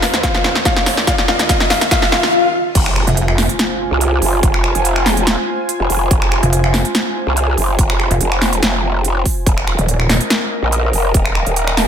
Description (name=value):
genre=heavy wobble dubstep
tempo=143 BPM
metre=4/4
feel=half-time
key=F minor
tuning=A4 = 442 Hz
part: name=dark baby grand piano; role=melody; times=0.0-2.3 s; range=F4 to F5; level=-20 LUFS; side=left 4 dB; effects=tape echo
part: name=supersaw pad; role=sustained chords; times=0.0-2.3 s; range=Eb2 to F4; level=-28 LUFS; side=right 1 dB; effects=phaser, sidechain pumping
part: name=big-room dance drum kit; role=drums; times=0.0-11.9 s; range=crash cymbal, finger snaps, hi-hat, snare drum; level=-17 LUFS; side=right 1 dB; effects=overdrive, high-pass filter on snare, high-pass filter on hats, high-pass filter on cymbals, high-pass filter on room
part: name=riser, swell and impact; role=sound effects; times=0.0-4.4 s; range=none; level=-19 LUFS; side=left 1 dB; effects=none
part: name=airy breathy pad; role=texture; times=0.0-11.9 s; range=F4 to Ab5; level=-22 LUFS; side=right 1 dB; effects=chorus, sidechain pumping
part: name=electronic kick drum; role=drums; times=0.2-11.2 s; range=none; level=-16 LUFS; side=equal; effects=overdrive
part: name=growl bass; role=bass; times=2.8-11.9 s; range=Eb1 to C2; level=-16 LUFS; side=equal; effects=chorus, overdrive
part: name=pulsing pluck wobble bass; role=bass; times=3.1-3.5, 6.4-10.2 s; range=Eb1 to F1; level=-14 LUFS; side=equal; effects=chorus, overdrive
room=light reverb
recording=none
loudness=-13 LUFS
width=side -8 dB against mid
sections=0.0-2.8 A section; 2.8-11.9 B section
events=build-up 0.0-2.8; drum fill 0.0-2.3; riser 0.0-2.3; swell 1.9-2.8; drop 2.8-11.9; impact 2.8-4.4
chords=0.0 Ebsus2; 2.8 Fm; 9.5 Ebsus2